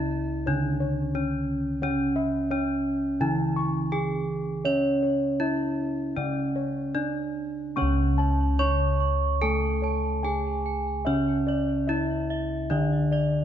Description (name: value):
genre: Javanese gamelan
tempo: 73-89 BPM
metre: 4/4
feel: straight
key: C# pelog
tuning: A4 = 440 Hz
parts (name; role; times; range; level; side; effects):
- gamelan-type bronze metallophone; melody; 0.0-13.4 s; C#4 to C#5; -28 LUFS; equal; none
- gamelan-type bronze metallophone; accompaniment; 0.0-13.4 s; C#3 to C#4; -31 LUFS; right 3 dB; none
- gamelan-type bossed gongs; arpeggios; 0.0-13.4 s; C#5 to C#6; -35 LUFS; left 6 dB; none
- gamelan-type bossed gongs; bass; 0.0-13.4 s; C#2 to C#5; -29 LUFS; left 1 dB; none
- gamelan-type bronze metallophone; arpeggios; 7.8-13.4 s; C#5 to C#6; -32 LUFS; right 5 dB; tape echo
room: light reverb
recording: dark, warm production, nothing above 7.6 kHz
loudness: -24 LUFS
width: side -10 dB against mid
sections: 0.0-7.8 A section; 7.8-13.4 B section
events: none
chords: none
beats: 0.48 1.15 | 1.83 2.51 3.21 3.92 | 4.65 5.40 6.17 6.96 | 7.77 8.59 9.42 10.24 | 11.06 11.88 12.70